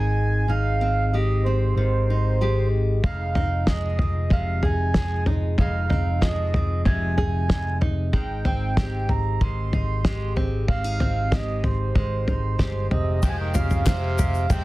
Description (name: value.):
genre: indie folk with a building arrangement.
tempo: 94 BPM.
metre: 4/4.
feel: straight.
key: F minor.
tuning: A4 = 440 Hz.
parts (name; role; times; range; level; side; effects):
mellow accordion; melody; 0.0-14.6 s; C5 to C6; -29 LUFS; right 4 dB; none.
fingerpicked steel-string acoustic guitar; accompaniment; 0.0-13.2 s; F2 to Ab4; -31 LUFS; left 1 dB; none.
picked electric bass; bass; 0.0-14.6 s; F1 to Ab1; -24 LUFS; equal; none.
open-back banjo; arpeggios; 3.0-14.6 s; Ab3 to Ab4; -34 LUFS; right 1 dB; none.
cloth-damped thuddy drum kit; drums; 3.0-14.6 s; kick drum, snare drum, toms; -23 LUFS; equal; none.
French horn with straight mute; second line; 12.9-14.6 s; C3 to F3; -33 LUFS; right 3 dB; none.
picked twelve-string acoustic guitar; accompaniment; 13.2-14.6 s; F3 to G4; -34 LUFS; left 8 dB; none.
tube shaker; percussion; 13.2-14.6 s; none; -41 LUFS; left 10 dB; none.
group handclap; percussion; 13.9-14.0 s; none; -36 LUFS; left 7 dB; none.
room: studio reverb.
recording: dense, heavily limited modern master.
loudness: -20 LUFS.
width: side -18 dB against mid.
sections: 0.0-13.2 A section; 13.2-14.6 B section.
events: none.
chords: 0.0 Abmaj7; 3.0 Fm7; 8.1 Abmaj7; 13.2 Fmadd9.